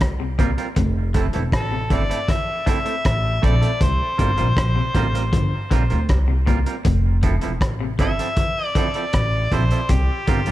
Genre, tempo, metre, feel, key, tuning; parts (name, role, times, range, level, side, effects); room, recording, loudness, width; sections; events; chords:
roots reggae; 79 BPM; 4/4; straight; F major; A4 = 440 Hz
upright bass; bass; 0.0-10.5 s; E1 to D2; -20 LUFS; equal
crunchy breakbeat drum kit; drums; 0.0-10.5 s; hi-hat, kick drum, rim click; -22 LUFS; equal
clean electric guitar; arpeggios; 0.2-10.5 s; Bb2 to F3; -30 LUFS; left 7 dB; lush chorus
semi-hollow electric guitar; accompaniment; 0.4-10.5 s; F3 to Bb4; -28 LUFS; right 6 dB; dub echo
mellow harmonica; melody; 1.5-10.5 s; G4 to E5; -25 LUFS; left 1 dB; dub echo
small room reverb; -18 LUFS; side -15 dB against mid
0.0-10.5 A section
0.0 C7sus4; 0.8 Fmaj7; 3.8 C7sus4; 6.9 Fmaj7; 9.9 C7sus4